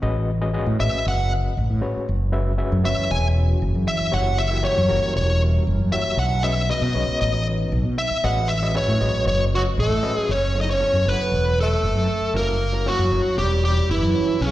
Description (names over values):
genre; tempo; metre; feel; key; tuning
jazz; 117 BPM; 4/4; straight; F# dorian; A4 = 438 Hz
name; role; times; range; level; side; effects
overdriven reed electric piano; accompaniment; 0.0-14.4 s; F#3 to E5; -29 LUFS; left 2 dB; fast tremolo, slapback echo
fretless electric bass; bass; 0.0-14.5 s; E1 to B2; -21 LUFS; equal; wide subtle chorus
smooth overdriven lead guitar; melody; 0.8-14.5 s; C#4 to G#5; -23 LUFS; equal; slapback echo
dark analog pad; sustained chords; 2.8-10.3 s; E3 to A#4; -33 LUFS; right 2 dB; chorus
breathy tenor saxophone; second line; 9.6-14.5 s; C#3 to D#4; -27 LUFS; right 2 dB; slapback echo
room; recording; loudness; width
light reverb, digital ambience; live gig heard through the venue's PA, recital hall reverb; -19 LUFS; side -14 dB against mid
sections
0.0-10.3 A section; 10.3-14.5 B section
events
lead electric guitar solo 0.0-10.3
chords
0.0 A69; 2.1 F#sus2; 4.1 F#7b9; 6.2 B9; 8.2 A69; 10.3 F#m7; 12.4 F#7b9